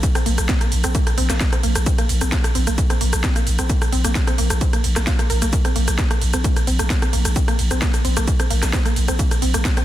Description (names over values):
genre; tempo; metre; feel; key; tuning
driving peak-time techno; 131 BPM; 4/4; straight; unclear; A4 = 440 Hz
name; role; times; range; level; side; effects
growling 808-style bass; bass; 0.0-9.6 s; Bb1; -21 LUFS; equal; overdrive, sidechain pumping, low-pass filter
electronic kick drum; drums; 0.0-9.7 s; none; -19 LUFS; equal; none
techno drum kit; drums; 0.0-9.8 s; hi-hat, ride cymbal, rim click, shaker, snare drum; -23 LUFS; right 1 dB; none
wide unison pluck; riff; 0.2-9.8 s; Bb3 to Bb4; -26 LUFS; right 1 dB; tube saturation, sidechain pumping, digital delay
room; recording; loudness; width
digital ambience; dense, heavily limited modern master; -16 LUFS; side -13 dB against mid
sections
0.0-9.8 A section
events
none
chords
0.0 Bb5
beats
| 0.03 0.49 0.95 1.41 | 1.86 2.32 2.78 3.24 | 3.70 4.15 4.61 5.07 | 5.53 5.99 6.44 6.90 | 7.36 7.82 8.28 8.73 | 9.19 9.65